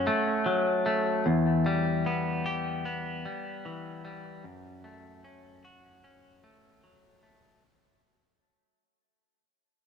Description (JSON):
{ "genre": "rock", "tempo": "76 BPM", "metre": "4/4", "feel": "straight", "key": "unclear", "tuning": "A4 = 437 Hz", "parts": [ { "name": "semi-hollow electric guitar", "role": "arpeggios", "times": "0.0-7.6 s", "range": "E2 to G4", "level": "-27 LUFS", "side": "left 1 dB", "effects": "analog delay" } ], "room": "light reverb", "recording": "none", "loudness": "-26 LUFS", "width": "side -7 dB against mid", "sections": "0.0-7.6 A section", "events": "fade-out 0.0-7.6", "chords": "0.0 F#m; 1.3 Em; 4.4 F#m" }